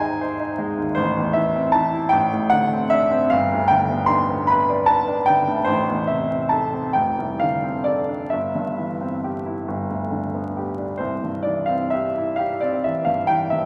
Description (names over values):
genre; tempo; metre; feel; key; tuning
classical, romantic nocturne for solo piano; 43-52 BPM (dotted quarters); 12/8; rubato; C major; A4 = 436 Hz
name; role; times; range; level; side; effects
clear upright piano; solo; 0.0-13.7 s; F1 to C6; -21 LUFS; equal; none
room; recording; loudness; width
wet recital hall reverb, RT60 1.6 s; vinyl crackle; -21 LUFS; mono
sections
0.0-11.0 A section; 11.0-13.7 B section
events
none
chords
0.0 Ab; 1.0 Am; 2.2 D5/A; 3.3 G; 5.7 Am; 7.0 Dm7/F; 8.3 C/G; 9.7 G; 11.0 C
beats
| 0.99 2.15 3.33 4.50 | 5.69 6.96 8.32 9.68 | 11.02 12.41